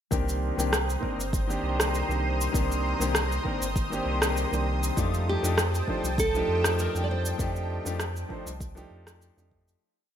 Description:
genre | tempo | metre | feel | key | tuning
sunset chillout | 99 BPM | 4/4 | swing 54% on 16ths | C dorian | A4 = 442 Hz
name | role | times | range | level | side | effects
warm concert grand piano | accompaniment | 0.1-9.8 s | Eb3 to C5 | -31 LUFS | left 2 dB | auto-pan, low-pass filter, ping-pong delay
lush unison pad | sustained chords | 0.4-9.8 s | C5 to Eb6 | -34 LUFS | equal | chorus, phaser
warm sub bass | bass | 0.1-9.8 s | G1 to F2 | -30 LUFS | equal | none
electronic cabasa and rim click | drums | 0.1-9.8 s | none | -31 LUFS | right 1 dB | none
electronic kick drum | drums | 0.1-9.6 s | none | -31 LUFS | equal | none
nylon-string guitar | melody | 5.0-9.2 s | F4 to D5 | -30 LUFS | right 2 dB | none
room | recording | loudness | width
moderate lush hall reverb, RT60 2.3 s | bright 1980s-style digital production | -25 LUFS | side -9 dB against mid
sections
0.1-9.8 groove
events
filter sweep on grand piano 0.1-9.8; fade-out 6.6-9.8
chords
0.1 Cm9; 5.0 F13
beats
| 0.12 0.73 1.33 1.94 | 2.54 3.15 3.76 4.36 | 4.97 5.58 6.18 6.79 | 7.39 8.00 8.61 9.21

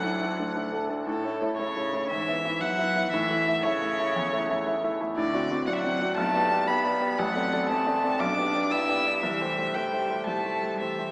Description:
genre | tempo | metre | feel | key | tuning
quick classical-period movement for piano trio | 117 BPM | 4/4 | rubato | G major from 5.2 s | A4 = 440 Hz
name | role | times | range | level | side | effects
rich violin | melody | 0.0-11.1 s | A4 to E6 | -28 LUFS | equal | none
warm cello | second line | 0.0-11.1 s | A2 to E4 | -34 LUFS | equal | none
clear grand piano | accompaniment | 0.0-11.1 s | A1 to E5 | -27 LUFS | equal | none
room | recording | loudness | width
wet church reverb, RT60 3.5 s | recorded in a church or concert hall, small speaker sound | -24 LUFS | side -27 dB against mid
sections
0.0-11.1 A section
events
none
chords
0.0 D; 1.1 A; 2.1 E/G#; 3.1 A; 5.2 D7/A; 6.2 G/B; 7.2 D7/A; 8.2 G/B; 9.2 Am7/C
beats
0.04 0.55 | 1.07 1.58 2.10 2.61 | 3.12 3.64 4.15 4.66 | 5.17 5.67 6.17 6.67 | 7.18 7.69 8.20 8.71 | 9.23 9.75 10.27 10.80

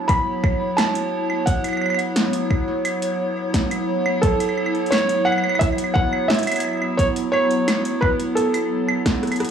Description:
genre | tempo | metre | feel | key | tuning
IDM | 87 BPM | 4/4 | straight | unclear | A4 = 436 Hz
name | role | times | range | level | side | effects
felt-muted upright piano | melody | 0.0-9.4 s | A4 to B5 | -23 LUFS | right 2 dB | analog delay
warbly tape-like pad | sustained chords | 0.0-9.5 s | F#3 to C#5 | -23 LUFS | equal | chorus, built-in reverb, phaser
electro analog drum machine | drums | 0.1-9.5 s | claves, hi-hat, rim click, snare drum | -24 LUFS | right 1 dB | overdrive
electronic kick drum | drums | 0.1-9.2 s | none | -21 LUFS | equal | none
room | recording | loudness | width
light reverb | dry, gritty hardware recording, transformer saturation, cassette tape, studio reverb | -18 LUFS | side -8 dB against mid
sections
0.0-9.5 A section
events
drum fill 9.1-9.5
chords
0.0 B5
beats
0.09 0.78 | 1.47 2.16 2.85 3.54 | 4.23 4.92 5.61 6.30 | 6.99 7.68 8.37 9.06

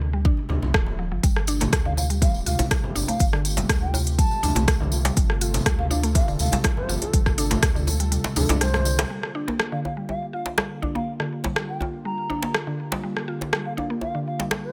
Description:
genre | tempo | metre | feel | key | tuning
afro house | 122 BPM | 4/4 | straight | G minor | A4 = 441 Hz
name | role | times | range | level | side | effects
warm sub bass | bass | 0.0-9.0 s | D1 to D2 | -28 LUFS | equal | sidechain pumping
mallet-like synth pluck | arpeggios | 0.1-14.6 s | D3 to F4 | -33 LUFS | equal | chorus, sidechain pumping, delay
electronic kick drum | drums | 0.2-7.7 s | none | -24 LUFS | equal | none
congas | percussion | 0.3-8.8 s | none | -33 LUFS | equal | none
afro-pop drum kit | drums | 0.7-14.6 s | hi-hat, rim click | -29 LUFS | equal | none
warm analog pad | sustained chords | 1.2-14.7 s | C3 to A4 | -36 LUFS | equal | chorus, sidechain pumping
tambourine | percussion | 1.2-9.1 s | none | -35 LUFS | equal | none
djembe | percussion | 1.6-14.6 s | none | -31 LUFS | equal | none
mellow bass bansuri | melody | 1.9-14.7 s | A4 to Bb5 | -34 LUFS | equal | delay
room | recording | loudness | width
light reverb, studio reverb | none | -24 LUFS | mono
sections
0.0-9.1 A section; 9.1-14.7 B section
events
kick drops out 8.1-9.1; drum fill 8.6-9.1; band accent 9.0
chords
0.0 G7(no3); 1.2 Fadd9; 9.1 Gm7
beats
0.25 0.74 | 1.23 1.73 2.22 2.71 | 3.20 3.69 4.18 4.68 | 5.17 5.66 6.15 6.64 | 7.14 7.63 8.12 8.61 | 9.10 9.60 10.09 10.58 | 11.07 11.56 12.05 12.55 | 13.04 13.53 14.02 14.51

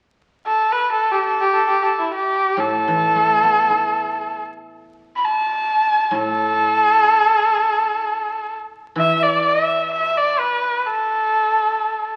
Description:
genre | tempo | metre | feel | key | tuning
chinese traditional, Chinese chamber ensemble | free time | none | none | A shang mode | A4 = 438 Hz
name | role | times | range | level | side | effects
clear erhu | melody | 0.5-12.2 s | E4 to B5 | -19 LUFS | equal | none
guzheng | accompaniment | 2.6-11.7 s | A2 to E4 | -30 LUFS | equal | none
room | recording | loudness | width
wet recital hall reverb, RT60 1.6 s | very old 78 rpm record, vinyl crackle | -18 LUFS | mono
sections
0.0-9.0 A section; 9.0-12.2 B section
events
none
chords
none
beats
free time

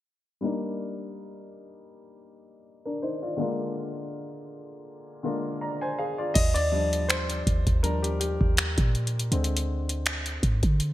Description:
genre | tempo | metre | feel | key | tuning
contemporary R&B | 81 BPM | 4/4 | swing 54% on 16ths | Eb major | A4 = 441 Hz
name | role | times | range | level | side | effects
warm baby grand piano | accompaniment | 0.4-10.9 s | D3 to Bb5 | -30 LUFS | left 1 dB | none
clean 808-style bass | bass | 6.4-10.9 s | D2 to D3 | -27 LUFS | equal | none
booming analog drum machine | drums | 6.4-10.9 s | crash cymbal, finger snaps, hi-hat, kick drum | -25 LUFS | equal | gated reverb
room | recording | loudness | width
light reverb, digital ambience | bright 1980s-style digital production, low-pass filter | -25 LUFS | side -15 dB against mid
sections
0.4-6.4 A section; 6.4-10.9 B section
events
filter sweep 0.4-6.4; grand piano solo 6.4-10.9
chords
0.4 Ebmaj7; 3.4 Bb7/D; 6.4 Ebmaj7; 9.3 Csus2/D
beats
| 0.43 1.17 1.91 2.65 | 3.39 4.13 4.87 5.62 | 6.36 7.10 7.84 8.58 | 9.32 10.06 10.80

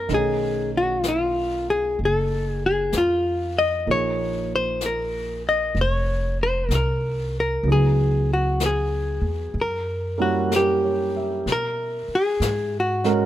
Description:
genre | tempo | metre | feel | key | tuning
jazz ballad | 64 BPM | 4/4 | swing 66% on 8ths | unclear | A4 = 439 Hz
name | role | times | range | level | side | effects
hollow-body jazz guitar | melody | 0.0-13.3 s | E#4 to D#5 | -22 LUFS | left 1 dB | none
warm concert grand piano | accompaniment | 0.0-13.3 s | D#3 to Fb5 | -28 LUFS | right 5 dB | none
upright bass | bass | 0.0-13.3 s | F1 to B2 | -26 LUFS | equal | none
jazz brush drum kit | drums | 0.1-13.3 s | brushed snare drum, hi-hat, snare drum | -33 LUFS | left 3 dB | none
room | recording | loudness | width
little or no reverb | minimal, uncompressed stereo recording | -20 LUFS | side -13 dB against mid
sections
0.0-11.5 A section; 11.5-13.3 B section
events
none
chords
0.1 B7#11; 3.9 Bb5; 7.7 Dbm7; 9.6 Gb7b9; 11.5 Bmaj7(no3)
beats
| 0.10 1.04 1.99 2.93 | 3.88 4.82 5.77 6.71 | 7.66 8.60 9.55 10.50 | 11.45 12.40

